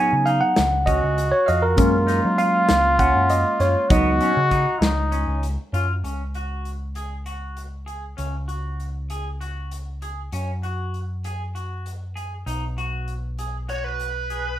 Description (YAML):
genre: progressive instrumental, band music in an uneven meter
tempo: 196 BPM (eighths)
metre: 7/8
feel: straight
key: Db mixolydian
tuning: A4 = 440 Hz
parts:
  - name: trombone with straight mute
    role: second line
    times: 0.0-5.9 s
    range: Db4 to Ab4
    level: -23 LUFS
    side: left 1 dB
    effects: none
  - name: tine electric piano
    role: accompaniment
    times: 0.0-5.4 s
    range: Gb3 to Ab5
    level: -20 LUFS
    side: right 1 dB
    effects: none
  - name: semi-hollow electric guitar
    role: arpeggios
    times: 0.0-14.5 s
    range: Cb4 to F5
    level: -30 LUFS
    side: left 1 dB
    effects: phaser
  - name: picked electric bass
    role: bass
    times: 0.1-14.6 s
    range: Cb2 to Gb3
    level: -25 LUFS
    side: equal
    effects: none
  - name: big rock drum kit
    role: drums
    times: 0.3-14.4 s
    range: hi-hat, kick drum, snare drum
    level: -24 LUFS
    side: equal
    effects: none
  - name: bluesy overdriven lead guitar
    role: melody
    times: 13.7-14.6 s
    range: Cb5 to Db5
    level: -27 LUFS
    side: right 3 dB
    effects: distortion
room: moderate studio reverb, RT60 0.6 s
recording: rough home demo mix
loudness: -19 LUFS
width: side -12 dB against mid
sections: 0.0-6.0 A section; 6.0-14.6 B section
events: tine electric piano solo 0.0-6.0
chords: 0.0 Db7sus4; 1.8 Gbmaj7; 3.9 Db7sus4; 6.0 Dbsus4; 10.3 Gb5; 12.5 Cb5